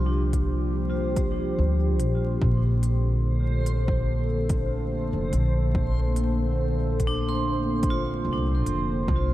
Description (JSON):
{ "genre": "ambient dub", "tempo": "72 BPM", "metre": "4/4", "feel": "straight", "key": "unclear", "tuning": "A4 = 442 Hz", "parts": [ { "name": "warbly tape-like pad", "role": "sustained chords", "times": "0.0-9.3 s", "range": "D3 to C5", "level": "-29 LUFS", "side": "equal", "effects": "chorus, built-in reverb" }, { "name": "vibraphone with hard mallets", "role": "arpeggios", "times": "0.0-9.3 s", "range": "D4 to C6", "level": "-32 LUFS", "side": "right 1 dB", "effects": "dub echo" }, { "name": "upright bass", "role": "bass", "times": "0.0-9.3 s", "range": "F1 to D2", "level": "-24 LUFS", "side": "equal", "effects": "none" }, { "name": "backwards swelling texture", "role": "texture", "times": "0.0-9.3 s", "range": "C5", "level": "-37 LUFS", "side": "equal", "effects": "built-in reverb" }, { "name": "electronic hi-hat", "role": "drums", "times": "0.3-8.8 s", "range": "none", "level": "-42 LUFS", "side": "equal", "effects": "none" }, { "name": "electronic kick drum", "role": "drums", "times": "0.3-9.3 s", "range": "none", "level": "-26 LUFS", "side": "equal", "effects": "overdrive" } ], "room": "light reverb", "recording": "vinyl crackle", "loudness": "-22 LUFS", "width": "side -15 dB against mid", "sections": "0.0-9.3 A section", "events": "none", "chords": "0.0 C7sus4; 2.4 Bbmaj9" }